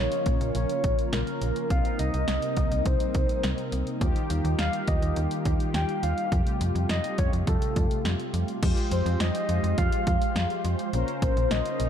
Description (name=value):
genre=synth-pop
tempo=104 BPM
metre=4/4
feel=straight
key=unclear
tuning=A4 = 440 Hz
part: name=soft octave-layered synth lead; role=melody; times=0.0-11.9 s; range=A4 to G5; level=-31 LUFS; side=left 1 dB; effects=chorus, phaser, digital delay
part: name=mellow synth brass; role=accompaniment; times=0.0-11.9 s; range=Ab3 to C5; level=-34 LUFS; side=left 1 dB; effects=chorus
part: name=ensemble organ-string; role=sustained chords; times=0.0-11.9 s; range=C3 to C5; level=-32 LUFS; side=equal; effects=ensemble chorus
part: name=slap-like FM bass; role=bass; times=0.0-11.9 s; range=Bb1 to F2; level=-28 LUFS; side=equal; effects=none
part: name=punchy analog drum machine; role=drums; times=0.1-11.9 s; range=crash cymbal, hi-hat, kick drum, snare drum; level=-28 LUFS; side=equal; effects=none
room=light reverb, digital ambience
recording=dark, warm production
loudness=-24 LUFS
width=side -9 dB against mid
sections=0.0-8.6 A section; 8.6-11.9 B section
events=none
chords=0.0 Bbm; 1.7 Cm7; 4.0 Ebadd9; 6.3 Fadd9; 8.6 Fmadd9; 10.9 Bbmadd9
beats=0.55 1.13 | 1.70 2.28 2.86 3.43 | 4.01 4.59 5.17 5.74 | 6.32 6.90 7.47 8.05 | 8.63 9.20 9.78 10.36 | 10.93 11.51